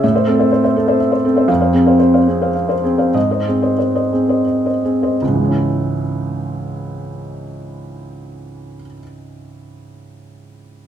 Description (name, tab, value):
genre	neoclassical minimalist piano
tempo	79-127 BPM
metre	3/4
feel	rubato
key	C# harmonic minor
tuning	A4 = 439 Hz
part	felt-muted upright piano	solo	0.0-10.9 s	C#2 to F5	-15 LUFS	equal	none
room	wet recital hall reverb, RT60 1.4 s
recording	minimal, uncompressed stereo recording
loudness	-13 LUFS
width	side -9 dB against mid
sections	0.0-5.2 A section; 5.2-9.7 B section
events	slowing down 0.8-5.2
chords	0.0 Am; 1.5 Fm; 3.1 G#; 5.2 C#m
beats	| 0.03 0.51 1.00 | 1.49 2.00 2.55 | 3.15 3.78 4.47 | 5.21 5.95 6.71 | 7.46 8.21 8.96